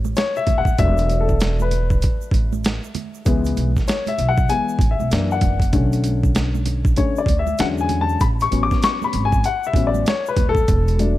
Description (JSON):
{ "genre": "hip hop, jazz-hop", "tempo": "97 BPM", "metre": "4/4", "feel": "swing 62% on 16ths", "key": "unclear", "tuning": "A4 = 440 Hz", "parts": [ { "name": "upright bass", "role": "bass", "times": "0.0-11.2 s", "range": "D#1 to F#2", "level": "-21 LUFS", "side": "right 1 dB", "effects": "none" }, { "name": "congas and tube shaker", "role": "percussion", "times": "0.0-11.2 s", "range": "none", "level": "-32 LUFS", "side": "right 11 dB", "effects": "none" }, { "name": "dark baby grand piano", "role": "accompaniment", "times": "0.2-11.2 s", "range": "D3 to D6", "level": "-21 LUFS", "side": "left 5 dB", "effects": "none" }, { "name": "boom bap sampler-style drum kit", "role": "drums", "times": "0.2-11.2 s", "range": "hi-hat, kick drum, snare drum", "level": "-20 LUFS", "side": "right 1 dB", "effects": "none" } ], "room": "studio ambience", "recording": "dark, warm production", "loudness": "-16 LUFS", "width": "side -15 dB against mid", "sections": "0.0-11.2 A section", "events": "grand piano solo 0.0-11.2", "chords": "0.0 A6; 0.8 E7sus4; 3.3 C#m7; 5.1 F#aug7; 5.7 Bm7; 7.6 E13; 8.2 A69; 10.7 E7sus4", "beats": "0.17 | 0.79 1.40 2.02 2.64 | 3.26 3.88 4.50 5.12 | 5.73 6.35 6.97 7.59 | 8.21 8.83 9.45 10.06 | 10.68" }